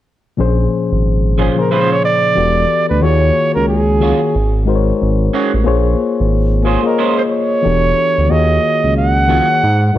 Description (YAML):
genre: R&B, neo-soul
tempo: 91 BPM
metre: 4/4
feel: swing 60% on 16ths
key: Bb minor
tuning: A4 = 443 Hz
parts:
  - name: reed electric piano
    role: accompaniment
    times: 0.4-10.0 s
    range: Bb2 to Eb5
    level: -16 LUFS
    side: left 5 dB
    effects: none
  - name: smooth synth bass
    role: bass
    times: 0.4-10.0 s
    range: E1 to Ab2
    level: -14 LUFS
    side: right 1 dB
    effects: none
  - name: breathy flugelhorn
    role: melody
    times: 1.4-10.0 s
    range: Ab4 to Gb5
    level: -16 LUFS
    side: right 3 dB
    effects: none
  - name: electric guitar through a small old amp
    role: second line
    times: 1.4-9.5 s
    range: Gb3 to Db5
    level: -22 LUFS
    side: right 7 dB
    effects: phaser, slapback echo
room: light reverb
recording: none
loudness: -12 LUFS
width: side -13 dB against mid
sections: 0.4-10.0 A section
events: none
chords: 0.4 Bbm9; 2.4 Em11; 3.0 Ebm11; 4.3 Ab7sus4; 5.6 Bbm9; 7.6 Em11; 8.3 Ebm11